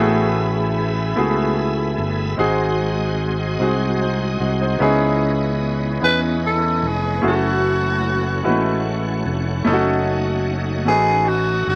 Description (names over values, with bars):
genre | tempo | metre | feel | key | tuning
slow gospel | 50 BPM (dotted quarters) | 6/8 | straight | unclear | A4 = 444 Hz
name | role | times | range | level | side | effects
bright grand piano | accompaniment | 0.0-11.8 s | G#2 to G#5 | -23 LUFS | equal | slapback echo
bright tonewheel organ | sustained chords | 0.0-11.8 s | A3 to B#5 | -32 LUFS | equal | slow rotary speaker, overdrive, chorus vibrato
muted studio string section | sustained chords | 0.0-11.8 s | E3 to G#4 | -31 LUFS | equal | none
fingered electric bass | bass | 0.0-11.8 s | E#1 to E2 | -24 LUFS | equal | none
growling tenor saxophone | melody | 6.0-11.8 s | F#4 to B4 | -22 LUFS | equal | slapback echo
room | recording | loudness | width
little or no reverb | recorded outdoors, with no room sound | -19 LUFS | mono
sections
0.0-11.8 A section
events
none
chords
0.0 F#m11/A; 2.4 G#7; 4.8 C#m9; 7.2 F#m7; 9.7 D#m7b5/F#